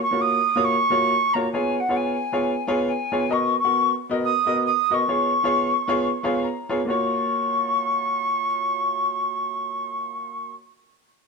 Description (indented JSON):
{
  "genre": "soul",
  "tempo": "135 BPM",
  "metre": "4/4",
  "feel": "swing 60% on 8ths",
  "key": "F# major",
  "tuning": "A4 = 440 Hz",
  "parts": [
    { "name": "concert flute", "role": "melody", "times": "0.0-10.5 s", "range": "F#5 to D#6", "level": "-22 LUFS", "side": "equal", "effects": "none" },
    { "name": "clear upright piano", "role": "accompaniment", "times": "0.1-10.5 s", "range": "A#3 to A#5", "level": "-25 LUFS", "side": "equal", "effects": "none" }
  ],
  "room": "light reverb",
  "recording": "dark, warm production",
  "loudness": "-20 LUFS",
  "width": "side -4 dB against mid",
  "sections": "0.0-6.9 A section; 6.9-10.4 B section",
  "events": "upright piano fill 6.0-6.9",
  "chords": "0.0 F#maj7; 1.5 C#7; 3.3 Bmaj7; 5.1 C#7; 6.9 F#maj7",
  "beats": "0.21 0.66 1.10 | 1.54 1.98 2.43 2.87 | 3.31 3.76 4.20 4.64 | 5.09 5.53 5.98 6.42 | 6.87 7.31 7.75 8.20 | 8.64 9.09 9.53 9.98"
}